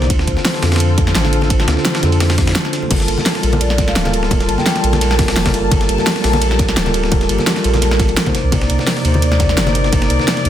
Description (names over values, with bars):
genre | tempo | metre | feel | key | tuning
liquid drum and bass | 171 BPM | 4/4 | swing 53% on 16ths | G minor | A4 = 438 Hz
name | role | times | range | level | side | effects
vibraphone with soft mallets | melody | 0.0-0.1, 3.6-4.8, 9.2-10.4 s | C5 to G5 | -26 LUFS | left 4 dB | dub echo
mellow tine electric piano | accompaniment | 0.0-10.5 s | C3 to D5 | -19 LUFS | right 1 dB | medium stereo tremolo, digital delay
dark studio string section | sustained chords | 0.0-10.5 s | Bb3 to A5 | -24 LUFS | left 2 dB | sidechain pumping
warm sub bass | bass | 0.0-10.5 s | D1 to F2 | -17 LUFS | equal | none
breakbeat sampler-style drum kit | drums | 0.0-10.5 s | hi-hat, ride cymbal, snare drum | -23 LUFS | right 1 dB | high-pass filter on snare, high-pass filter on cymbals, high-pass filter on hats, high-pass filter on room
congas | percussion | 0.0-10.3 s | none | -24 LUFS | left 4 dB | none
electronic kick drum | drums | 0.1-10.0 s | none | -18 LUFS | equal | none
pop drum kit | drums | 0.1-10.5 s | crash cymbal, hi-hat, ride cymbal, snare drum | -20 LUFS | equal | none
room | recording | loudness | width
light reverb | dense, heavily limited modern master | -12 LUFS | side -11 dB against mid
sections
0.0-2.9 A section; 2.9-10.5 A section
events
drop 0.0-2.9, 2.9-10.5; break 2.6-2.9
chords
0.1 Dm7; 2.9 Gm9; 8.3 Cm9